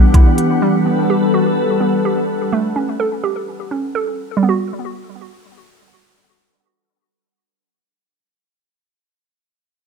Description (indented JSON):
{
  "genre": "hip hop, atmospheric cloud-rap",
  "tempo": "126 BPM",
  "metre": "4/4",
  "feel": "half-time",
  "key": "G lydian",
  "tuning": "A4 = 440 Hz",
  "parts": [
    { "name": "glassy FM pad", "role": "sustained chords", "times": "0.0-2.5 s", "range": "E3 to F#5", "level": "-16 LUFS", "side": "left 2 dB", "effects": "ensemble chorus, built-in reverb, sidechain pumping, low-pass filter" },
    { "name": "hollow square pluck", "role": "arpeggios", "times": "0.0-8.7 s", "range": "E3 to A4", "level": "-20 LUFS", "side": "right 5 dB", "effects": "chorus, low-pass filter, ping-pong delay" },
    { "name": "downlifter", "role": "sound effects", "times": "0.0-0.6 s", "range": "none", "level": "barely audible", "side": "none", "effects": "none" },
    { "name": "trap drum kit", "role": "drums", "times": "0.1-0.5 s", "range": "hi-hat, kick drum", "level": "-8 LUFS", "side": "equal", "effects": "none" }
  ],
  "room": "light reverb",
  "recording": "dark, warm production",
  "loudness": "-14 LUFS",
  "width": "side -6 dB against mid",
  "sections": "0.0-4.4 A section; 4.4-8.2 B section",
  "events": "none",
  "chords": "0.0 Em7; 0.6 Gmaj7; 2.5 A7; 4.4 Gmaj7",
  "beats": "0.14 | 0.62 1.09 1.57 2.05 | 2.52 3.00 3.48 3.95 | 4.43 4.90 5.38 5.86 | 6.33 6.81 7.29 7.76"
}